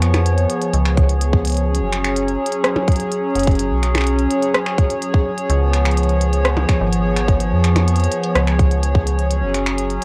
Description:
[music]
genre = IDM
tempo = 126 BPM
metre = 4/4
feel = straight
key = unclear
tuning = A4 = 437 Hz
[part]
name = hollow soft pad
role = sustained chords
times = 0.0-10.0 s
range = E#3 to C#5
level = -22 LUFS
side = equal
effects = chorus, cassette tape, plate reverb
[part]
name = metallic FM bass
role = bass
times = 0.0-10.0 s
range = F#1 to E#2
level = -20 LUFS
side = equal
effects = none
[part]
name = glitchy drum kit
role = drums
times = 0.0-10.0 s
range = finger snaps, hi-hat, percussion blips, rim click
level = -26 LUFS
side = equal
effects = overdrive
[part]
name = electronic kick drum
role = drums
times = 1.0-9.0 s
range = none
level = -18 LUFS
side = equal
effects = overdrive
[sound]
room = moderate booth ambience, RT60 0.3 s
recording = home recording on cassette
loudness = -18 LUFS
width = mono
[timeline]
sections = 0.0-10.0 A section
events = none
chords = 0.0 C#7; 1.7 F#sus2; 5.5 C#7; 9.3 F#sus2

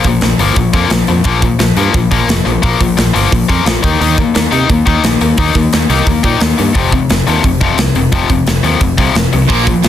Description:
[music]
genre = punk rock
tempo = 175 BPM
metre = 4/4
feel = straight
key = unclear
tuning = A4 = 440 Hz
[part]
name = tight distorted guitar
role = riff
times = 0.0-9.9 s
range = F2 to Eb4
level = -12 LUFS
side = left 6 dB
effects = distortion
[part]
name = tight metal drum kit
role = drums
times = 0.0-9.9 s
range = hi-hat, kick drum, snare drum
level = -14 LUFS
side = right 1 dB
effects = none
[part]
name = picked electric bass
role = bass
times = 0.1-9.9 s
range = F1 to C3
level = -16 LUFS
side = right 2 dB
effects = none
[part]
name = distorted electric guitar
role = riff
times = 9.5-9.9 s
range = Bb2 to Bb3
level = -15 LUFS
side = right 16 dB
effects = overdrive
[sound]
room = little or no reverb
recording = dense, heavily limited modern master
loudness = -9 LUFS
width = side -11 dB against mid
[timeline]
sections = 0.0-9.9 A section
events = none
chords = 0.0 Bb5; 3.8 Eb5; 6.7 F5

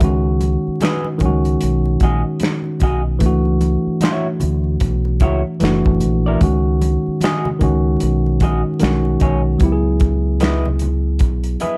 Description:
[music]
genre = R&B, neo-soul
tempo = 75 BPM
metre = 4/4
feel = swing 60% on 16ths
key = C# minor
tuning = A4 = 440 Hz
[part]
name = tine electric piano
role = accompaniment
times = 0.0-11.8 s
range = D#3 to G#4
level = -21 LUFS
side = equal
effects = none
[part]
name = deep dub fingered electric bass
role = bass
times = 0.0-11.6 s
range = F#1 to D2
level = -21 LUFS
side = equal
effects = none
[part]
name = warm soul drum kit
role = drums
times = 0.0-11.8 s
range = finger snaps, hi-hat, kick drum, snare drum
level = -22 LUFS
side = equal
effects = none
[part]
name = congas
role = percussion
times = 0.0-11.8 s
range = none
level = -32 LUFS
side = equal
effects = none
[part]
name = electric guitar through a small old amp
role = second line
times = 0.8-11.8 s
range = D#4 to D#5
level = -26 LUFS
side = equal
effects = none
[sound]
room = moderate studio reverb, RT60 0.7 s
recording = vinyl crackle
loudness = -17 LUFS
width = mono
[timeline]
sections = 0.0-9.6 A section; 9.6-11.8 B section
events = none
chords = 0.0 B6/C# (rootless); 1.2 B69; 3.2 Dmaj9/C#; 5.6 F#7alt; 6.4 C#sus24; 7.6 Bmaj13; 8.8 B69; 9.6 C#m7

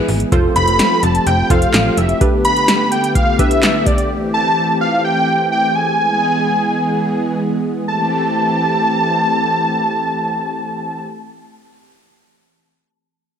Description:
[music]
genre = synth-pop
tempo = 127 BPM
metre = 4/4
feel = straight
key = A minor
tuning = A4 = 440 Hz
[part]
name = funky polysynth comp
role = accompaniment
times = 0.0-3.9 s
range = D4 to C5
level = -20 LUFS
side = right 1 dB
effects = chorus
[part]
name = brassy analog pad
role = sustained chords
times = 0.0-11.1 s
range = D3 to G#4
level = -20 LUFS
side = left 1 dB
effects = chorus
[part]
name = slap-like FM bass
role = bass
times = 0.1-2.1 s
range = F1 to A1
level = -17 LUFS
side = equal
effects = none
[part]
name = electro analog drum machine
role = drums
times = 0.1-4.1 s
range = handclaps, hi-hat, kick drum, snare drum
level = -17 LUFS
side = equal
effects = overdrive, gated reverb
[part]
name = wide unison lead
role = melody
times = 0.6-11.1 s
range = D5 to B5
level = -16 LUFS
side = right 1 dB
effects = slapback echo
[sound]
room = moderate concert hall reverb, RT60 2.2 s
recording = none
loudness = -13 LUFS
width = side -8 dB against mid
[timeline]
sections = 0.0-7.9 A section; 7.9-11.7 B section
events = none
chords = 0.3 Fadd9; 2.2 Gadd9; 4.1 Am7; 6.0 E; 7.9 Am7

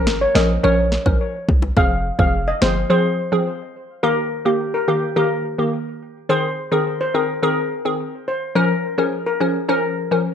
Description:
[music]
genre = dancehall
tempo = 106 BPM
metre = 4/4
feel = straight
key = Bb dorian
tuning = A4 = 440 Hz
[part]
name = steel pan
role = melody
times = 0.0-10.1 s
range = G4 to F5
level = -21 LUFS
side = left 2 dB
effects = ping-pong delay
[part]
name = glassy wavetable pluck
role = accompaniment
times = 0.0-10.3 s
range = Eb3 to Bb4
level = -20 LUFS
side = equal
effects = chorus, sidechain pumping
[part]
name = warm 808-style bass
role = bass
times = 0.0-2.8 s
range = F1 to C2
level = -22 LUFS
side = equal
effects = none
[part]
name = afro-pop drum kit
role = drums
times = 0.1-2.7 s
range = finger snaps, kick drum, snare drum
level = -20 LUFS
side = equal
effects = overdrive
[part]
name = bongos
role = percussion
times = 0.6-2.8 s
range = none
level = -29 LUFS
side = left 6 dB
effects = none
[sound]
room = light reverb, small room ambience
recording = worn, warbling old tape, cassette tape, warbly pitch drift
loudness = -17 LUFS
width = side -8 dB against mid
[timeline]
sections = 0.0-4.0 A section; 4.0-10.3 B section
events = break 2.9-4.0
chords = 0.0 Bbm; 1.8 Fm; 4.0 Eb; 6.3 Ab; 8.6 Bbm

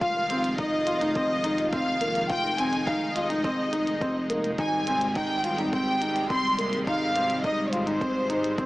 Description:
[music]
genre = piano and strings electronica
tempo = 105 BPM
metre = 4/4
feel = straight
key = F minor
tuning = A4 = 439 Hz
[part]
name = warm symphonic violin section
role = melody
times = 0.0-8.7 s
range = C5 to C6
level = -27 LUFS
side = equal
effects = none
[part]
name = lush unison pad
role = sustained chords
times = 0.0-8.7 s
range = C3 to F4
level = -33 LUFS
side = equal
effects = chorus, sidechain pumping
[part]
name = felt-muted upright piano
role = riff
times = 0.0-8.7 s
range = Bb3 to F4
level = -28 LUFS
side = equal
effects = none
[part]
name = dark detuned saw bass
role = bass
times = 0.0-8.7 s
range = F1 to Ab1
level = -36 LUFS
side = equal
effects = sidechain pumping
[part]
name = electronic hi-hat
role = drums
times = 0.0-8.7 s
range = none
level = -40 LUFS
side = right 1 dB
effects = none
[part]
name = electronic kick drum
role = drums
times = 0.0-8.7 s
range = none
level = -35 LUFS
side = equal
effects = overdrive
[sound]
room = moderate echo chamber reverb, RT60 2.6 s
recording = small speaker sound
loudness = -24 LUFS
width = side -18 dB against mid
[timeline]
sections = 0.0-8.7 A section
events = none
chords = 0.0 Fm7; 4.6 Abmaj7

